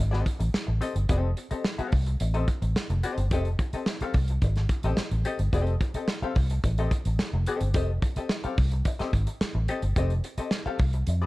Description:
funk; 108 BPM; 4/4; straight; F mixolydian; A4 = 440 Hz
vintage muted fingered electric bass; bass; 0.0-11.3 s; F1 to F2; -26 LUFS; equal
hollow-body jazz guitar; accompaniment; 0.1-11.3 s; C4 to F5; -32 LUFS; left 4 dB; wah
warm soul drum kit; drums; 0.1-11.2 s; hi-hat, kick drum, snare drum; -28 LUFS; equal
little or no reverb; dark, warm production; -24 LUFS; side -19 dB against mid
0.0-11.3 A section
0.0 F9
0.54 | 1.09 1.65 2.20 2.76 | 3.31 3.87 4.42 4.98 | 5.53 6.08 6.64 7.19 | 7.75 8.30 8.86 9.41 | 9.97 10.52 11.07

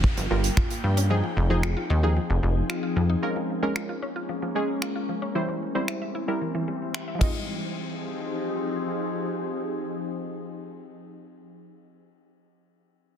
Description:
dance-pop; 113 BPM; 4/4; straight; F minor; A4 = 440 Hz
glassy wavetable pluck; accompaniment; 0.0-10.8 s; F3 to Eb5; -29 LUFS; right 1 dB; chorus, sidechain pumping, low-pass filter
glassy FM pad; sustained chords; 0.0-10.8 s; E3 to G5; -31 LUFS; left 2 dB; ensemble chorus, built-in reverb, sidechain pumping, low-pass filter
mallet-like synth pluck; arpeggios; 0.0-10.8 s; E3 to E5; -35 LUFS; equal; chorus, phaser, sidechain pumping, low-pass filter, dub echo
plucky analog bass; bass; 0.0-3.2 s; F1 to G2; -23 LUFS; equal; sidechain pumping
natural country drum kit; drums; 0.0-7.3 s; finger snaps, hi-hat, kick drum, ride cymbal; -28 LUFS; equal; soft clipping on snare
downlifter; sound effects; 0.0-3.2 s; -40 LUFS; equal
light reverb, small room ambience; dense, heavily limited modern master; -24 LUFS; side -9 dB against mid
0.0-7.5 A section; 7.5-11.7 B section
filter sweep 0.0-7.5
0.0 Gm7; 1.1 Fm7; 3.2 Bbm7; 5.4 C; 7.2 Fm7
0.04 0.57 | 1.10 1.64 2.17 2.70 | 3.23 3.76 4.29 4.82 | 5.35 5.88 6.41 6.95 | 7.48 8.01 8.54 9.07 | 9.60 10.13 10.66

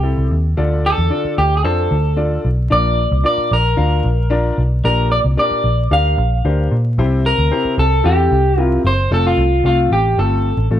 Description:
uptempo 1960s-style soul; 112 BPM; 4/4; straight; F major; A4 = 443 Hz
electric guitar through a small old amp; melody; 0.0-10.7 s; F4 to F5; -17 LUFS; equal; plate reverb
warm grand piano; accompaniment; 0.0-10.8 s; Bb2 to F5; -22 LUFS; left 3 dB; plate reverb
vintage muted picked electric bass; bass; 0.0-10.8 s; F1 to Bb2; -16 LUFS; equal
light reverb; vinyl crackle; -13 LUFS; side -11 dB against mid
0.6-9.1 A section; 9.1-10.8 B section
0.0 C; 0.6 Dm; 2.7 Bb; 4.8 Gm/Bb; 7.0 C; 9.1 F
0.04 | 0.57 1.10 1.64 2.17 | 2.71 3.24 3.78 4.31 | 4.84 5.38 5.91 6.44 | 6.98 7.51 8.04 8.58 | 9.11 9.64 10.18 10.71

